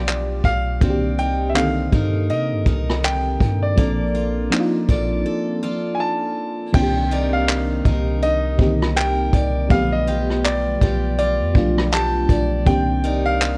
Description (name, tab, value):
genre	contemporary R&B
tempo	81 BPM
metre	4/4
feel	swing 58% on 16ths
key	C dorian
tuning	A4 = 440 Hz
part	clear grand piano	melody	0.0-13.6 s	D5 to A5	-27 LUFS	equal	none
part	FM electric piano with soft pad layer	accompaniment	0.0-13.6 s	D3 to A4	-26 LUFS	equal	chorus, tremolo
part	picked steel-string acoustic guitar	arpeggios	0.0-13.6 s	Bb3 to D5	-29 LUFS	equal	none
part	warm 808-style bass	bass	0.0-13.6 s	Bb1 to C3	-25 LUFS	equal	none
part	vintage brush drum kit	drums	0.1-13.6 s	crash cymbal, handclaps, hi-hat, kick drum, rim click	-23 LUFS	equal	vintage 12-bit sampler grit
room	light reverb, studio ambience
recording	worn, warbling old tape, cassette tape, warbly pitch drift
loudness	-20 LUFS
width	mono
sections	0.0-6.7 A section; 6.7-13.6 B section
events	break 5.3-6.7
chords	0.0 G7/B; 0.8 Cm9; 3.8 Bbmaj7; 6.7 Cm9; 9.7 G7/B; 12.7 Cm9